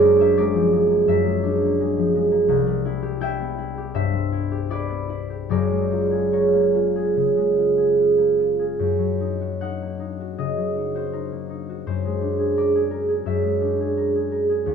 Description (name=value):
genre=classical, solo harp piece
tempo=69-87 BPM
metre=4/4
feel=rubato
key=unclear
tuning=A4 = 441 Hz
part: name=concert harp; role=solo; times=0.0-14.7 s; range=Gb1 to G5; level=-19 LUFS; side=right 1 dB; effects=none
room=wet stone room reverb, RT60 1.3 s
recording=dark, warm production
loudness=-19 LUFS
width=side -6 dB against mid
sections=0.0-8.8 A section; 8.8-14.7 B section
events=none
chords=0.0 Bb7#11/Gb; 2.5 Cmaj7; 5.5 Gbmaj9; 8.8 Gb6; 11.9 Bb7#11/Gb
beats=0.37 1.07 1.79 | 2.50 3.21 3.94 4.70 | 5.49 6.31 7.16 7.98 | 8.78 9.62 10.39 11.14 | 11.86 12.56 13.26 13.97 | 14.68